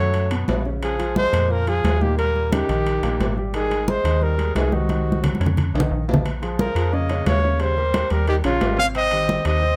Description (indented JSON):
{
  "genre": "Afro-Cuban jazz",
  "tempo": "177 BPM",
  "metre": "4/4",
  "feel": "straight",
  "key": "unclear",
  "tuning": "A4 = 440 Hz",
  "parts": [
    { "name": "breathy trumpet", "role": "melody", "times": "0.0-9.8 s", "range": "F4 to F5", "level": "-25 LUFS", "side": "equal", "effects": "plate reverb" },
    { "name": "warm tenor saxophone", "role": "second line", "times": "0.0-9.8 s", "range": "C3 to Db4", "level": "-32 LUFS", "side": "equal", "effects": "none" },
    { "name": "warm concert grand piano", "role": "accompaniment", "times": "0.0-9.8 s", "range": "Bb2 to Db5", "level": "-30 LUFS", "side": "equal", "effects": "none" },
    { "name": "metallic FM bass", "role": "bass", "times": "0.0-9.8 s", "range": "Ab1 to F#2", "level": "-25 LUFS", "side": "equal", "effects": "none" },
    { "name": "congas", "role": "percussion", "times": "0.1-9.8 s", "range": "none", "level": "-27 LUFS", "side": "equal", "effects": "none" },
    { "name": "timbales", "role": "percussion", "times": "0.1-9.6 s", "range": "none", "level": "-33 LUFS", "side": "equal", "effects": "none" }
  ],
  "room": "moderate small room reverb, RT60 0.6 s",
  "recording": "none",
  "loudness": "-21 LUFS",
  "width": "mono",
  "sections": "0.0-6.3 A section; 6.3-9.8 B section",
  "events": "drum fill 4.9-6.3",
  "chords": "0.0 B7sus2; 0.8 Bbm9; 2.2 Eb7; 3.5 Abmaj7; 4.9 Cdim; 5.6 Bbmadd11; 6.3 Bbm7; 7.6 Eb13; 8.9 Abmaj7"
}